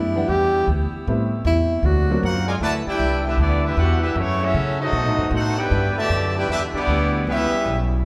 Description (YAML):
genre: jazz, big band swing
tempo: 155 BPM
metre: 4/4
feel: swing 64% on 8ths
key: G major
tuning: A4 = 440 Hz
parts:
  - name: breathy tenor saxophone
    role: melody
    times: 0.0-2.2 s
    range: E4 to G4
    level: -24 LUFS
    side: equal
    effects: none
  - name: warm saxophone section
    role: sustained chords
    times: 0.0-8.1 s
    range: B2 to G4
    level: -32 LUFS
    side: equal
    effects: none
  - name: upright bass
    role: bass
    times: 0.0-8.0 s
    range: B1 to C#3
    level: -24 LUFS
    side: equal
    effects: none
  - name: warm grand piano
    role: accompaniment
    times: 0.2-2.2 s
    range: E3 to F#5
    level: -29 LUFS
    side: equal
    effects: none
  - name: bright trumpet section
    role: melody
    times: 2.2-7.8 s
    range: A3 to A5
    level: -26 LUFS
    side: equal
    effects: none
  - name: warm trombone section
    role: second line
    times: 2.2-7.8 s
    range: B2 to G4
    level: -28 LUFS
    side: equal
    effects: none
room: wet recital hall reverb, RT60 1.4 s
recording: recorded in a church or concert hall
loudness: -21 LUFS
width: mono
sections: 0.0-2.6 A section; 2.6-8.1 B section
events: tenor saxophone solo 0.0-2.6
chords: 0.3 Em7; 1.1 Am7; 1.8 D7alt; 2.6 G6; 4.2 F#m7; 4.9 B7b9; 5.7 Em7; 7.3 C#m7b5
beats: 0.30 0.68 | 1.07 1.46 1.85 2.23 | 2.62 3.01 3.40 3.78 | 4.17 4.56 4.94 5.33 | 5.72 6.11 6.49 6.88 | 7.27 7.66 8.04